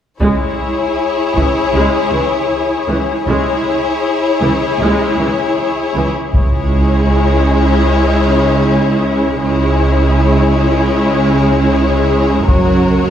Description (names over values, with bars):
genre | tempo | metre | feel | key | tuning
cinematic, epic orchestral film score | 78 BPM | 4/4 | straight | C# minor | A4 = 436 Hz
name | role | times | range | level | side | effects
warm symphonic violin section | second line | 0.2-13.1 s | G#4 to C#5 | -17 LUFS | left 6 dB | none
warm symphonic viola section | accompaniment | 0.2-13.1 s | E3 to F#4 | -16 LUFS | right 1 dB | none
clear symphonic double bass section | bass | 0.2-13.1 s | F#1 to C#2 | -18 LUFS | right 2 dB | none
rich symphonic cello section | bass | 0.2-13.1 s | C#2 to F#2 | -17 LUFS | right 2 dB | none
taiko ensemble | drums | 0.2-1.7, 6.3-7.8, 12.5-13.1 s | none | -17 LUFS | equal | none
room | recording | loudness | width
wet scoring stage reverb, RT60 1.6 s | heard from further back in the room | -11 LUFS | side -9 dB against mid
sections
0.2-6.3 A section; 6.3-13.1 B section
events
build-up 6.3-13.1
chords
0.2 C#m; 12.5 F#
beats
| 0.21 0.98 1.74 2.51 | 3.27 4.03 4.80 5.57 | 6.35 7.12 7.88 8.65 | 9.42 10.19 10.96 11.72 | 12.49